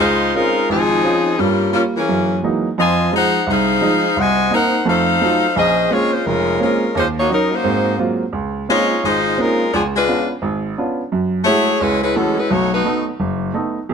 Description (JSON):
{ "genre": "jazz", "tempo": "173 BPM", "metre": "4/4", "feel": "swing 63% on 8ths", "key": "Db major", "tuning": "A4 = 440 Hz", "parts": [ { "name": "edgy saxophone section", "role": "melody", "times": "0.0-13.1 s", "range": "Fb3 to Ab5", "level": "-16 LUFS", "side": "left 2 dB", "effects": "none" }, { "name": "clear baby grand piano", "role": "accompaniment", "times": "0.0-13.9 s", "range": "F1 to Gb4", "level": "-19 LUFS", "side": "right 3 dB", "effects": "none" } ], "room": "moderate echo chamber reverb, RT60 1.9 s", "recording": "dark, warm production", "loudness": "-15 LUFS", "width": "side -6 dB against mid", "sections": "0.0-8.3 A section; 8.3-13.9 B section", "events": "none", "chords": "0.0 Dbmaj9; 1.4 Gm7b5; 2.1 Gb13; 2.8 Fm7; 4.2 Cm7b5; 4.9 F7b9; 5.6 Bbm9; 6.9 Ebm7; 7.6 Ab13; 8.3 Dbmaj13; 9.7 Db7b9; 11.1 Gbm9; 12.5 Cb7" }